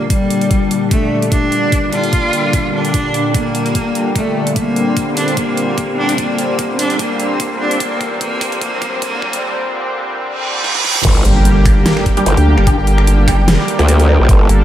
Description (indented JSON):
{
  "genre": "heavy wobble dubstep",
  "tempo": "148 BPM",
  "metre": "4/4",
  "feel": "swing 54% on 16ths, half-time",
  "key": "G minor",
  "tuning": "A4 = 441 Hz",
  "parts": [
    { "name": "clear cello", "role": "melody", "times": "0.0-9.4 s", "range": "G3 to F4", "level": "-18 LUFS", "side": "left 1 dB", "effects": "diffuse ambient delay" },
    { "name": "lush unison pad", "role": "sustained chords", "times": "0.0-14.6 s", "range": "Bb2 to A4", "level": "-18 LUFS", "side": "equal", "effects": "chorus, sidechain pumping" },
    { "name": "dubstep drum kit", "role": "drums", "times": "0.1-14.6 s", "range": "crash cymbal, finger snaps, hi-hat, snare drum", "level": "-21 LUFS", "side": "right 1 dB", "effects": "overdrive" },
    { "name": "electronic kick drum", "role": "drums", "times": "0.1-14.4 s", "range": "none", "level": "-16 LUFS", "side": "equal", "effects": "overdrive" },
    { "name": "riser, reverse cymbal and impact", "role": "sound effects", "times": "7.1-12.7 s", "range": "none", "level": "-22 LUFS", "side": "right 1 dB", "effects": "none" },
    { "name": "growl bass", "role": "bass", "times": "11.0-14.5 s", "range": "G1 to D2", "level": "-11 LUFS", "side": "equal", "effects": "chorus, overdrive" },
    { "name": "vowel-sweep wobble bass", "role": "bass", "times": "11.2-14.6 s", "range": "G1 to D2", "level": "-11 LUFS", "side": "equal", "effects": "chorus, overdrive" },
    { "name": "orchestra-hit-like synth stab", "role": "stabs", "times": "12.2-13.5 s", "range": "G3 to G4", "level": "-21 LUFS", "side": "equal", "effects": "built-in reverb, phaser, diffuse ambient delay" }
  ],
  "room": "moderate lush hall reverb, RT60 1.7 s",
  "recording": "dreamy mix soaked in reverb, high-pass filter",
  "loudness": "-12 LUFS",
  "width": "side -11 dB against mid",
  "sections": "0.0-11.0 A section; 11.0-14.6 B section",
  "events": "build-up 0.0-11.0; filter sweep on analog synth pad 0.0-11.0; filter sweep 0.0-11.0; drum fill 4.6-9.4, 10.6-11.0; reverse cymbal 10.4-11.0; drop 11.0-14.6; impact 11.0-12.7",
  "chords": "0.0 Gm",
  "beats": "0.10 0.51 0.91 | 1.32 1.72 2.13 2.53 | 2.94 3.35 3.75 4.16 | 4.56 4.97 5.37 5.78 | 6.18 6.59 6.99 7.40 | 7.80 8.21 8.62 9.02 | 9.43 9.83 10.24 10.64 | 11.05 11.45 11.86 12.26 | 12.67 13.07 13.48 13.88 | 14.29"
}